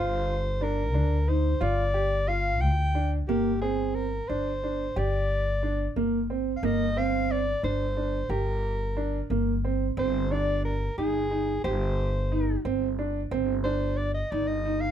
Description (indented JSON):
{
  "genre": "progressive instrumental, band music in an uneven meter",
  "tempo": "179 BPM (eighths)",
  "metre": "5/8",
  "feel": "straight",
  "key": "G phrygian",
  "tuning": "A4 = 439 Hz",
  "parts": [
    { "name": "breathy soprano saxophone", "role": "melody", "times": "0.0-14.9 s", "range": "G4 to G5", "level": "-30 LUFS", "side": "left 1 dB", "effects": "none" },
    { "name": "warm grand piano", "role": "arpeggios", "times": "0.0-14.9 s", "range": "Bb3 to G4", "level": "-29 LUFS", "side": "right 3 dB", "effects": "none" },
    { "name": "upright bass", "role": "bass", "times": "0.0-14.9 s", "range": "G1 to D2", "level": "-29 LUFS", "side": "left 1 dB", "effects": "none" }
  ],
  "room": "light reverb",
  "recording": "none",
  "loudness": "-25 LUFS",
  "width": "side -9 dB against mid",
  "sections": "0.0-3.3 A section; 3.3-14.9 B section",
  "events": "soprano saxophone solo 3.3-14.9",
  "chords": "0.0 Gm7; 3.3 Gm; 10.0 Cm/G"
}